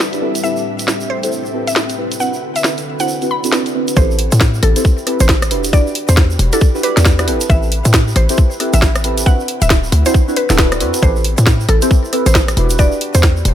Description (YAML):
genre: UK garage, two-step garage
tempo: 136 BPM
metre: 4/4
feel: swing 61% on 16ths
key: A dorian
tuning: A4 = 439 Hz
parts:
  - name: mallet-like synth pluck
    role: melody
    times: 0.0-13.3 s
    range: A4 to B5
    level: -22 LUFS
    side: equal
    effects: chorus, ping-pong delay
  - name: warm analog pad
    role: sustained chords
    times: 0.0-13.5 s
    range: A2 to B4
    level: -29 LUFS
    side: equal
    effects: chorus, sidechain pumping
  - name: garage drum kit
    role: drums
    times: 0.0-13.5 s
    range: hi-hat, rim click, snare drum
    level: -17 LUFS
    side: equal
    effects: low-pass filter on hats, low-pass filter on snare
  - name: egg shaker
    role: percussion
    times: 0.0-13.4 s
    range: none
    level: -27 LUFS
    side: right 4 dB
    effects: none
  - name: ethereal airy pad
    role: texture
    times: 0.0-4.0 s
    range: G3 to G5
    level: -26 LUFS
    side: equal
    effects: ensemble chorus, built-in reverb, tremolo, sidechain pumping
  - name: deep mellow chord stab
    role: stabs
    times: 0.1-12.9 s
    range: C4 to D5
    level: -20 LUFS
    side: right 1 dB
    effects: chorus, phaser, ping-pong delay
  - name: short 808-style bass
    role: bass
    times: 4.0-13.5 s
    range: D1 to A2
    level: -14 LUFS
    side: equal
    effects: none
  - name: electronic kick drum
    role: drums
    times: 4.0-13.3 s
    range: none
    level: -12 LUFS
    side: equal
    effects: none
room: little or no reverb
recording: none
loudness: -12 LUFS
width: side -11 dB against mid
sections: 0.0-4.0 A section; 4.0-13.5 B section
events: drop 4.0-13.5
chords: 0.2 Am9; 2.2 D13; 4.0 Am9; 5.5 Em9; 7.3 Am9; 9.3 D13; 11.0 Am9; 12.6 Em9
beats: 0.00 | 0.44 0.88 1.32 1.76 | 2.20 2.64 3.08 3.53 | 3.97 4.41 4.85 5.29 | 5.73 6.17 6.61 7.05 | 7.50 7.94 8.38 8.82 | 9.26 9.70 10.14 10.58 | 11.03 11.47 11.91 12.35 | 12.79 13.23